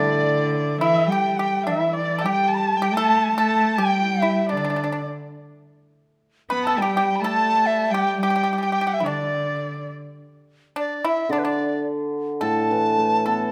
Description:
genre	chinese traditional, Chinese chamber ensemble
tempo	106 BPM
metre	2/4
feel	rubato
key	D zhi mode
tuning	A4 = 440 Hz
part	large dizi	melody	0.0-13.5 s	B4 to B5	-25 LUFS	equal	none
part	dark erhu	second line	0.0-9.9 s	D5 to B5	-30 LUFS	equal	none
part	pipa	second line	0.0-13.5 s	D4 to B4	-30 LUFS	equal	none
part	rich cello	second line	0.0-9.9 s	D3 to B3	-28 LUFS	equal	none
part	hammered dulcimer	accompaniment	0.0-0.5, 6.8-8.5, 11.3-13.5 s	A2 to B3	-29 LUFS	equal	none
room	moderate recital hall reverb, RT60 1.5 s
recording	close, detailed microphones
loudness	-22 LUFS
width	mono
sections	0.0-1.1 A section; 1.1-10.2 B section; 10.2-13.5 C section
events	none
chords	none

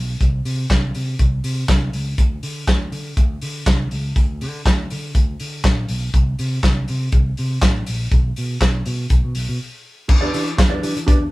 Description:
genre	disco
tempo	121 BPM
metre	4/4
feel	straight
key	unclear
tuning	A4 = 440 Hz
part	fingered electric bass	bass	0.0-11.3 s	A1 to E3	-23 LUFS	equal	none
part	warm soul drum kit	drums	0.2-11.2 s	crash cymbal, handclaps, hi-hat, kick drum, snare drum	-18 LUFS	equal	none
part	mellow electric guitar	accompaniment	10.1-11.2 s	D4 to D5	-22 LUFS	right 1 dB	none
room	moderate studio reverb, RT60 0.5 s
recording	band playing live in one room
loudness	-17 LUFS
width	side -20 dB against mid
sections	0.0-10.1 A section; 10.1-11.3 B section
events	break 9.6-10.1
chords	0.0 N.C.; 10.1 Em7

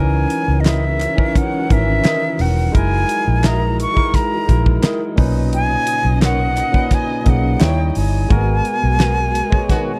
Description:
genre	lush 1970s-style soul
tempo	86 BPM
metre	4/4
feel	straight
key	C# dorian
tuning	A4 = 442 Hz
part	breathy silver concert flute	melody	0.0-10.0 s	D#5 to C#6	-23 LUFS	equal	none
part	barky tine electric piano	accompaniment	0.0-10.0 s	A#2 to C#5	-25 LUFS	equal	overdrive
part	warm studio string section	sustained chords	0.0-10.0 s	B2 to D#5	-32 LUFS	equal	none
part	vintage muted fingered electric bass	bass	0.0-9.4 s	E1 to D#2	-20 LUFS	equal	none
part	damped 70s drum kit	drums	0.3-9.9 s	hi-hat, kick drum, snare drum	-19 LUFS	equal	none
part	electric guitar through a small old amp	riff	0.7-9.2 s	B3 to D#5	-30 LUFS	equal	spring reverb
part	group handclap	percussion	0.7-9.2 s	none	-35 LUFS	equal	none
part	warm horn section	stabs	9.7-9.9 s	D#3 to F#4	-26 LUFS	equal	none
room	little or no reverb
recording	dry, close 1970s-style studio recording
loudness	-16 LUFS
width	mono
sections	0.0-10.0 A section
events	band accent 8.3-10.0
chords	0.0 C#m69; 2.7 F#13; 5.2 Bmaj9; 7.6 D#7b9; 8.3 G#m9

